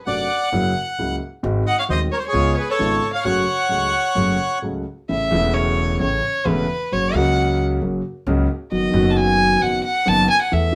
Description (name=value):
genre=tango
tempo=132 BPM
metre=4/4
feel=rubato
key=F# harmonic minor, A major from 5.1 s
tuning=A4 = 440 Hz
part: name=bandoneon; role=melody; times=0.1-4.6 s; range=G#4 to F#5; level=-24 LUFS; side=equal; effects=none
part: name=rich violin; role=second line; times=0.1-10.8 s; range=B4 to A5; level=-24 LUFS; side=equal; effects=none
part: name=warm concert grand piano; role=accompaniment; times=0.1-10.8 s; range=D#1 to A4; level=-23 LUFS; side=equal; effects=none
part: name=upright bass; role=bass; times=0.1-10.7 s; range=E1 to E2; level=-27 LUFS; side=equal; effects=none
room=moderate studio ambience, RT60 0.5 s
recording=band playing live in one room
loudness=-20 LUFS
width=mono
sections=0.0-5.1 A section; 5.1-10.8 B section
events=violin solo 5.1-10.8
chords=0.0 D7/F#; 0.5 F#7; 1.4 G#7; 2.3 C#7; 3.2 F#m; 5.1 A; 6.9 F#; 8.7 B/F#